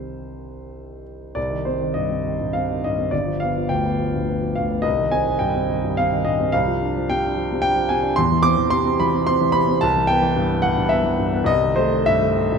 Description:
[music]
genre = classical, romantic character piece for solo piano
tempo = 83-117 BPM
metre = 3/4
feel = rubato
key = C minor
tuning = A4 = 439 Hz
[part]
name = warm grand piano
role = solo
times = 0.0-12.6 s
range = G1 to D6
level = -18 LUFS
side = equal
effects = none
[sound]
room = moderate recital hall reverb, RT60 1.6 s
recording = faint mains hum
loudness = -18 LUFS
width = side -6 dB against mid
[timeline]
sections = 0.0-1.4 A section; 1.4-12.6 B section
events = none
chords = 0.0 Cm; 3.1 G7; 4.8 Cm; 6.5 Csus24; 8.2 C/E; 9.8 Cmaj7; 11.5 Am7b5/C

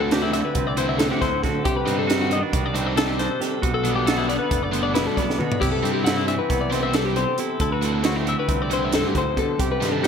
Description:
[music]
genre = math rock and midwest emo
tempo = 272 BPM (eighths)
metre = 9/8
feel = straight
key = unclear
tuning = A4 = 436 Hz
[part]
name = twangy electric guitar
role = accompaniment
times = 0.0-10.1 s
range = D2 to A4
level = -27 LUFS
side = right 6 dB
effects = slapback echo
[part]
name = twelve-string electric guitar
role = arpeggios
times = 0.0-10.1 s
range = E4 to E5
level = -25 LUFS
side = left 7 dB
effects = tape echo, slapback echo
[part]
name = crunchy overdriven guitar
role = riff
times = 0.0-10.1 s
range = B2 to G4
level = -28 LUFS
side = right 1 dB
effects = slapback echo
[part]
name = growling picked electric bass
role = bass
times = 0.0-10.1 s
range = F#1 to D3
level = -28 LUFS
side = right 1 dB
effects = overdrive
[part]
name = crisp fusion drum kit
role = drums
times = 0.1-10.1 s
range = crash cymbal, hi-hat, kick drum, snare drum, toms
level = -26 LUFS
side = right 1 dB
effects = none
[sound]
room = moderate concert hall reverb, RT60 1.9 s, small room reverb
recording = big arena sound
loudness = -20 LUFS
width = side -7 dB against mid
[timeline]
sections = 0.0-10.1 A section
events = drum fill 5.3-5.6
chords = 0.0 Cmaj7; 1.6 Cmadd9; 3.6 Gmaj9; 5.6 Cmaj7

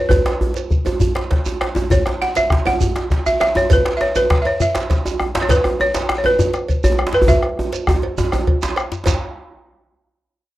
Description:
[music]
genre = west african traditional, West African drum ensemble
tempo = 134 BPM (dotted quarters)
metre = 12/8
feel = straight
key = unclear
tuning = A4 = 440 Hz
[part]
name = balafon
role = melody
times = 0.0-8.7 s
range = B4 to F#5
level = -18 LUFS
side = equal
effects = none
[part]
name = bombo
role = percussion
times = 0.1-9.2 s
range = none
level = -19 LUFS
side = left 1 dB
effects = none
[part]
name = cowbell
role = percussion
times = 0.1-9.2 s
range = none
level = -28 LUFS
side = right 6 dB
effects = none
[part]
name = djembe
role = percussion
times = 0.1-9.2 s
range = none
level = -23 LUFS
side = left 2 dB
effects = none
[part]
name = djembe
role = percussion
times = 0.1-9.2 s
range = none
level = -20 LUFS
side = right 1 dB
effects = none
[part]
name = shekere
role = percussion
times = 0.1-9.2 s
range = none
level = -29 LUFS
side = right 3 dB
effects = none
[sound]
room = light reverb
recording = dry, close 1970s-style studio recording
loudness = -15 LUFS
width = side -16 dB against mid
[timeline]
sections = 0.0-9.1 A section; 9.1-10.6 B section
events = drum fill 7.3-9.1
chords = none

